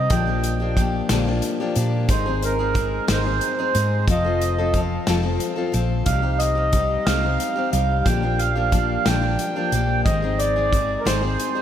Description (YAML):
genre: folk rock and heartland rock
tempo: 60 BPM (dotted quarters)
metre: 6/8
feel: straight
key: unclear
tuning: A4 = 440 Hz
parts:
  - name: mellow accordion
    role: melody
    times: 0.0-11.6 s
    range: Bb4 to G5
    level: -24 LUFS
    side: right 3 dB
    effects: slapback echo
  - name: picked steel-string acoustic guitar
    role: accompaniment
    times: 0.0-11.6 s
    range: Ab2 to A4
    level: -24 LUFS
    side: left 5 dB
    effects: slapback echo
  - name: hollow-body short-scale fingered electric bass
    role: bass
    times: 0.0-11.4 s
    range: F1 to Bb2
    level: -23 LUFS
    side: equal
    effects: none
  - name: natural country drum kit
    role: drums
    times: 0.1-11.5 s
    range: hi-hat, kick drum, snare drum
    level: -25 LUFS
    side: equal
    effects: none
room: moderate lush hall reverb, RT60 3.2 s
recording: big arena sound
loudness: -18 LUFS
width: side -10 dB against mid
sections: 0.0-11.6 A section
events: none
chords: 0.1 Bb6; 2.1 Ab; 4.1 F; 6.1 Cm; 8.1 Bb6; 10.1 Ab